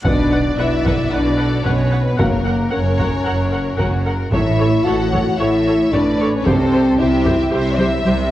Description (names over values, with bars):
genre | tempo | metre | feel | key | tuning
cinematic, epic orchestral film score | 112 BPM | 4/4 | straight | B minor | A4 = 440 Hz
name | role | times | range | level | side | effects
clear symphonic violin section | melody | 0.0-8.3 s | A#4 to F#5 | -27 LUFS | left 2 dB | none
clear symphonic viola section | accompaniment | 0.0-8.1 s | G4 to F#5 | -25 LUFS | equal | none
clear symphonic cello section | bass | 0.0-8.3 s | F#2 to C3 | -23 LUFS | right 2 dB | none
rich symphonic double bass section | bass | 0.0-8.3 s | F#1 to C2 | -22 LUFS | right 2 dB | none
taiko ensemble | drums | 0.0-8.3 s | none | -22 LUFS | equal | none
reverse cymbal and impact | sound effects | 0.0-2.2 s | none | -28 LUFS | equal | none
rich studio violin section | second line | 0.1-8.3 s | F#4 to E5 | -26 LUFS | left 3 dB | none
mellow French horn section | sustained chords | 0.1-8.3 s | A#3 to F#4 | -19 LUFS | left 1 dB | none
timpani | percussion | 2.2-3.0 s | F#2 | -27 LUFS | equal | none
room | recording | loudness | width
wet scoring stage reverb, RT60 1.5 s | worn, warbling old tape, cassette tape, warbly pitch drift | -14 LUFS | side -14 dB against mid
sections
0.0-8.3 A section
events
impact 0.0-2.2; drum fill 7.8-8.3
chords
0.0 Bm; 2.2 F#; 4.3 A; 6.5 C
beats
| 0.04 0.58 1.11 1.65 | 2.19 2.73 3.26 3.79 | 4.33 4.86 5.39 5.93 | 6.46 7.00 7.53 8.06